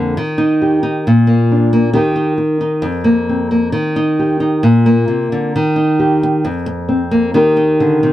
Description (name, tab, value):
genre	highlife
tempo	134 BPM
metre	4/4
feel	swing 54% on 16ths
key	unclear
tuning	A4 = 439 Hz
part	nylon-string guitar	solo	0.0-8.1 s	F2 to Bb4	-12 LUFS	equal	none
room	light reverb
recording	dry, close 1970s-style studio recording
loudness	-12 LUFS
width	side -13 dB against mid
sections	0.0-8.1 A section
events	none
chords	0.2 Eb; 1.1 Bb; 2.0 Eb; 2.9 Fsus4; 3.8 Eb; 4.6 Bb; 5.5 Eb; 6.4 Fsus4; 7.3 Eb